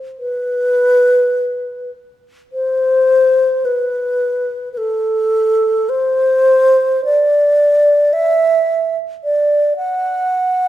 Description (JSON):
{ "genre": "classical, free, expressive piece for unaccompanied alto flute", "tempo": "51-56 BPM", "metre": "4/4", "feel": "rubato", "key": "unclear", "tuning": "A4 = 440 Hz", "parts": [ { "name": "wooden-headed alto flute", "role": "solo", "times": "0.2-10.7 s", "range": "A4 to F#5", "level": "-12 LUFS", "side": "equal", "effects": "none" } ], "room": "moderate recital hall reverb, RT60 1.5 s", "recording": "none", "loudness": "-12 LUFS", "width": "side -13 dB against mid", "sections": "0.0-10.7 A section", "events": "none", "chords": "none", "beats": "0.19 1.36 | 2.52 3.65 4.78 5.91 | 7.05 8.15 9.24 10.31" }